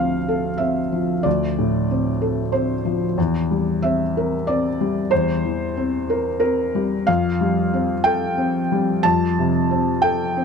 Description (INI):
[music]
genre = neoclassical minimalist piano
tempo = 92 BPM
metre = 3/4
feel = rubato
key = unclear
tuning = A4 = 439 Hz
[part]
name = felt-muted upright piano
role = solo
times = 0.0-10.4 s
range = D2 to A5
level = -18 LUFS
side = equal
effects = none
[sound]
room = little or no reverb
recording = close, detailed microphones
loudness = -18 LUFS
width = side -6 dB against mid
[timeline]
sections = 0.0-10.4 A section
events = none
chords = 0.0 Dm7; 3.2 C7/E; 7.1 Fadd9